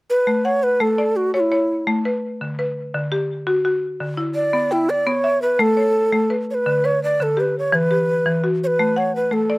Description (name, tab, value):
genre	southern african traditional, mbira-style interlocking cycle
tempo	113 BPM (dotted quarters)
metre	12/8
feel	straight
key	A mixolydian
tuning	A4 = 440 Hz
part	breathy low Native American-style wooden flute	melody	0.1-9.6 s	E4 to D5	-18 LUFS	right 1 dB	none
part	buzzing marimba with hard mallets	arpeggios	0.3-9.6 s	D3 to G5	-21 LUFS	left 1 dB	none
room	little or no reverb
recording	recorded outdoors, with no room sound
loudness	-17 LUFS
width	side -22 dB against mid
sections	0.3-9.6 A section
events	none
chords	0.3 A; 2.4 D; 4.5 Bmadd11; 5.6 A; 6.7 G/D; 7.7 Em; 8.8 A